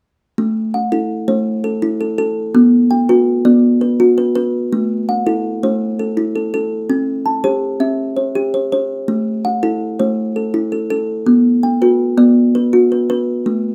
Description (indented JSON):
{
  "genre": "southern african traditional",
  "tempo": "110 BPM (dotted quarters)",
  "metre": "12/8",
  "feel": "straight",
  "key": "A equiheptatonic",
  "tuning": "A4 = 440 Hz",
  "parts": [
    { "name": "kalimba", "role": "arpeggios", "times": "0.4-13.7 s", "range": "A3 to A5", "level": "-16 LUFS", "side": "equal", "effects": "none" }
  ],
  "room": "wet studio reverb, RT60 0.5 s",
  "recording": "rough home demo mix",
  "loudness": "-16 LUFS",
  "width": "mono",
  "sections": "0.4-13.7 A section",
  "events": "none",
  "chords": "0.4 Am; 2.5 Bm; 4.7 Am; 6.9 C; 9.1 Am; 11.3 Bm",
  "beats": "| 0.37 0.92 1.46 2.00 | 2.54 3.09 3.63 4.17 | 4.72 5.26 5.80 6.35 | 6.89 7.44 7.99 8.53 | 9.08 9.62 10.17 10.72 | 11.27 11.81 12.36 12.91 | 13.46"
}